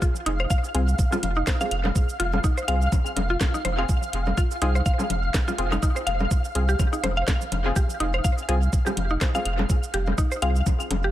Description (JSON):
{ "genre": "minimal techno", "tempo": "124 BPM", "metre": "4/4", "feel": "swing 56% on 16ths", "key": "F minor", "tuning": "A4 = 440 Hz", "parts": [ { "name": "mallet-like synth pluck", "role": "riff", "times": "0.0-11.1 s", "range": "Eb4 to F5", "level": "-29 LUFS", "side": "equal", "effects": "chorus, sidechain pumping, tape echo" }, { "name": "electronic kick drum", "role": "drums", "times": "0.0-10.8 s", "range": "none", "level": "-23 LUFS", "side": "equal", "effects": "none" }, { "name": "garage drum kit", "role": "drums", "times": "0.0-11.0 s", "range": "hi-hat, shaker, snare drum", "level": "-32 LUFS", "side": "right 1 dB", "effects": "analog delay" }, { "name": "flickering grainy texture", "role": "texture", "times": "0.0-11.1 s", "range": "F5", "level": "-33 LUFS", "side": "right 1 dB", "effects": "built-in reverb, sidechain pumping" }, { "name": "saturated sub bass", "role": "bass", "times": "0.3-11.1 s", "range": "F1 to C2", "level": "-24 LUFS", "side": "equal", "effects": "sidechain pumping" }, { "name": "claves, bongos and congas", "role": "percussion", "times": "0.4-11.0 s", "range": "none", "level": "-31 LUFS", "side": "left 2 dB", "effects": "analog delay" }, { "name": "filtered dub chord stab", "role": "stabs", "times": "0.7-10.5 s", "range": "C4 to Ab4", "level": "-33 LUFS", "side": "left 2 dB", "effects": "chorus, analog delay" } ], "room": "light reverb, digital ambience", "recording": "echo-heavy mix", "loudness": "-21 LUFS", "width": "side -13 dB against mid", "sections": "0.0-11.1 A section", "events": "none", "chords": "0.0 Fm", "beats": "| 0.02 0.50 0.99 1.47 | 1.96 2.44 2.92 3.41 | 3.89 4.37 4.86 5.34 | 5.83 6.31 6.79 7.28 | 7.76 8.24 8.73 9.21 | 9.70 10.18 10.66" }